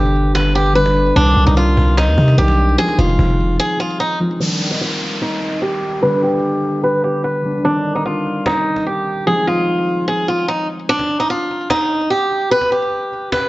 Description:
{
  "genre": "hip hop, trap",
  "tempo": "148 BPM",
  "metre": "4/4",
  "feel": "half-time",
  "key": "C harmonic minor",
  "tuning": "A4 = 440 Hz",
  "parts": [
    { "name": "picked swing-style acoustic guitar", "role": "melody", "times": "0.0-13.5 s", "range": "D4 to B4", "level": "-17 LUFS", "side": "equal", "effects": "low-pass filter" },
    { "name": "concert harp", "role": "accompaniment", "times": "0.0-12.3 s", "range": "D3 to D5", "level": "-21 LUFS", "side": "equal", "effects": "low-pass filter" },
    { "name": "long sustained 808-style bass", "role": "bass", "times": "0.0-3.6 s", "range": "F1 to C3", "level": "-14 LUFS", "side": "equal", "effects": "none" },
    { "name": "cajon", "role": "drums", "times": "0.2-13.4 s", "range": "none", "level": "-24 LUFS", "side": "equal", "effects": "none" },
    { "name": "downlifter", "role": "sound effects", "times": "4.4-7.6 s", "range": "none", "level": "-25 LUFS", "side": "equal", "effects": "none" }
  ],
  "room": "light reverb, small room reverb",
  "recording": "worn, warbling old tape, cassette tape, warbly pitch drift, nothing above 7.7 kHz",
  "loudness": "-14 LUFS",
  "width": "side -19 dB against mid",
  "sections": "0.0-4.4 A section; 4.4-10.9 B section; 10.9-13.5 C section",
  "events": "break 3.6-4.4, 10.1-10.9; filter sweep 4.4-10.9; kick muted 10.9-13.5",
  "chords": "0.0 G; 1.2 Cmadd9; 2.8 Fm7; 4.4 Cmadd9; 6.0 G; 7.6 Cmadd9; 9.3 Fm7; 10.9 N.C."
}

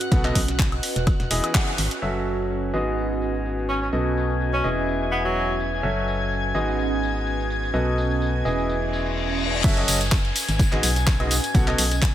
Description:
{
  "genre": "piano house",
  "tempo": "126 BPM",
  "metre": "4/4",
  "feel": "swing 54% on 16ths",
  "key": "F# dorian",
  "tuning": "A4 = 440 Hz",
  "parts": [
    { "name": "warm chamber violin section", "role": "sustained chords", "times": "0.0-12.1 s", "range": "F#5 to G#6", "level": "-32 LUFS", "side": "left 3 dB", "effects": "vintage 12-bit sampler grit, sidechain pumping, low-pass filter" },
    { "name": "house drum kit", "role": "drums", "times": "0.0-12.1 s", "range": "crash cymbal, handclaps, hi-hat, tambourine, woodblock", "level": "-26 LUFS", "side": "equal", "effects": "low-pass filter on hats, low-pass filter on snare, low-pass filter on perc, low-pass filter on cymbals, low-pass filter on room" },
    { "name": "warbly tape-like pad", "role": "texture", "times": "0.0-12.1 s", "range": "C#4 to D#5", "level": "-30 LUFS", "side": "right 4 dB", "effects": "chorus, built-in reverb, phaser, sidechain pumping" },
    { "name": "bright grand piano", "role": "riff", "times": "0.1-11.8 s", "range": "G#2 to F#5", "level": "-27 LUFS", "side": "left 1 dB", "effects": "sidechain pumping, low-pass filter, dub echo" },
    { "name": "organ-like FM bass", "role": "bass", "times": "0.1-12.1 s", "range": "E1 to B1", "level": "-27 LUFS", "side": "equal", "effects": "sidechain pumping" },
    { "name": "dusty soul sampler-style drum kit", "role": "drums", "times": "0.1-1.9, 9.6-12.1 s", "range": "ride cymbal, snare drum", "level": "-36 LUFS", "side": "right 2 dB", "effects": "none" },
    { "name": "electronic kick drum", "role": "drums", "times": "0.1-1.6, 9.6-12.1 s", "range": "none", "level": "-20 LUFS", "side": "equal", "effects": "overdrive" },
    { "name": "clear tenor saxophone", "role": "melody", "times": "3.7-5.6 s", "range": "F#3 to C#4", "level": "-29 LUFS", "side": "equal", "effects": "dub echo" },
    { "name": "reverse cymbal and downlifter", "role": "sound effects", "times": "8.9-12.1 s", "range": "none", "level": "-30 LUFS", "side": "left 3 dB", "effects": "none" }
  ],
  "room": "light reverb, digital ambience",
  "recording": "none",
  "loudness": "-20 LUFS",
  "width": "side -12 dB against mid",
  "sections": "0.0-2.0 A section; 2.0-9.6 B section; 9.6-12.1 C section",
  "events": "band accent 1.5; filter sweep on violin section 2.0-9.6; reverse cymbal 8.9-9.6; drop 9.6-12.1",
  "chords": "0.1 B7; 0.8 Emaj7; 2.0 F#m7; 2.7 G#m7; 3.9 B7; 4.6 Emaj7; 5.8 F#m7; 6.5 G#m7; 7.7 B7; 8.4 Emaj7; 9.6 F#m7; 10.4 G#m7; 11.5 B7"
}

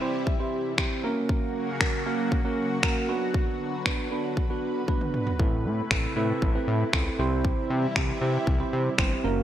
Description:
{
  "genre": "dance-pop",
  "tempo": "117 BPM",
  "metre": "4/4",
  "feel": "straight",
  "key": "unclear",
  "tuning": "A4 = 440 Hz",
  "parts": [
    { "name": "tine electric piano", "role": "accompaniment", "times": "0.0-9.4 s", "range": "A#3 to C5", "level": "-29 LUFS", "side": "right 3 dB", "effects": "analog chorus, sidechain pumping" },
    { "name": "lush unison pad", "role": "sustained chords", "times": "0.0-9.4 s", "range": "C3 to B4", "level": "-33 LUFS", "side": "left 2 dB", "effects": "chorus, phaser, sidechain pumping" },
    { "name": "pop drum kit", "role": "drums", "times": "0.3-9.1 s", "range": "finger snaps, kick drum, toms", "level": "-26 LUFS", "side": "equal", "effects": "gated reverb" },
    { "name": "fat analog bass", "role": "bass", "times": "5.4-9.4 s", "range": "F#1 to C3", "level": "-27 LUFS", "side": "left 1 dB", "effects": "sidechain pumping" }
  ],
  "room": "light reverb, digital ambience",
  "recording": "bright 1980s-style digital production",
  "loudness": "-24 LUFS",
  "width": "side -11 dB against mid",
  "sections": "0.0-9.4 A section",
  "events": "drum fill 4.9-5.4",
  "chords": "0.0 C; 1.0 F#; 3.1 Bm; 5.4 Amadd9; 7.2 C"
}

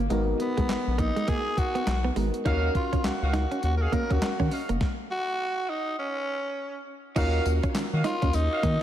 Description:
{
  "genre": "R&B, new jack swing",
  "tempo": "102 BPM",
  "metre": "4/4",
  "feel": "swing 61% on 16ths",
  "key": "Eb minor",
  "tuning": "A4 = 442 Hz",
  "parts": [
    { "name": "FM electric piano", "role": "accompaniment", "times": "0.0-8.8 s", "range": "Cb4 to F5", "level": "-32 LUFS", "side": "left 1 dB", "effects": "chorus, slapback echo" },
    { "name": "direct-recorded clean electric guitar", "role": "riff", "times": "0.0-8.7 s", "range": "Ab3 to Eb4", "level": "-32 LUFS", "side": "right 4 dB", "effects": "wide subtle chorus" },
    { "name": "round analog bass", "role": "bass", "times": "0.0-8.8 s", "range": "F1 to Eb3", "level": "-26 LUFS", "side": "equal", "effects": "none" },
    { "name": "crisp 8-bit digital drum machine", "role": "drums", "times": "0.1-8.8 s", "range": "crash cymbal, handclaps, hi-hat, kick drum, snare drum, tambourine", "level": "-29 LUFS", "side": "equal", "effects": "none" },
    { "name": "growling tenor saxophone", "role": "melody", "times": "0.4-8.8 s", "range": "Cb4 to Bb4", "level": "-30 LUFS", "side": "equal", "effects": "slapback echo, tape echo" },
    { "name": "warm horn section", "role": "stabs", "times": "2.5-8.6 s", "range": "Gb4 to F5", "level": "-35 LUFS", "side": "right 2 dB", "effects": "slapback echo, tape echo" }
  ],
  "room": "moderate recital hall reverb, RT60 1.6 s, digital ambience",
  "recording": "big arena sound",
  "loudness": "-24 LUFS",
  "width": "side -11 dB against mid",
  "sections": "0.0-7.2 A section; 7.2-8.8 B section",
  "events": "stop 4.8-7.2",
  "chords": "0.1 Abm7; 2.5 Ebm9; 4.8 N.C.; 7.2 Ebm9"
}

